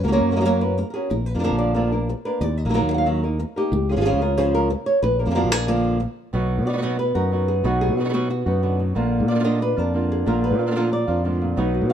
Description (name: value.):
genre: flamenco.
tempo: 184 BPM.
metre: 4/4.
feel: straight.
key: Bb phrygian dominant.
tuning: A4 = 440 Hz.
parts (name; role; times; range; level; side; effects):
flamenco guitar; melody; 0.0-11.9 s; Ab2 to Gb5; -22 LUFS; right 1 dB; none.
fingered electric bass; bass; 0.0-11.9 s; Ab1 to B2; -23 LUFS; left 1 dB; none.
flamenco guitar; stabs; 6.3-11.9 s; B2 to F#4; -26 LUFS; right 3 dB; none.
room: light reverb.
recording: dark, warm production.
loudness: -19 LUFS.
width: side -9 dB against mid.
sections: 0.0-6.3 A section; 6.3-11.9 B section.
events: none.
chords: 0.0 Gb; 1.1 Bb; 2.4 Ebm; 3.7 Db; 5.0 Bb; 6.3 B; 9.0 Bb.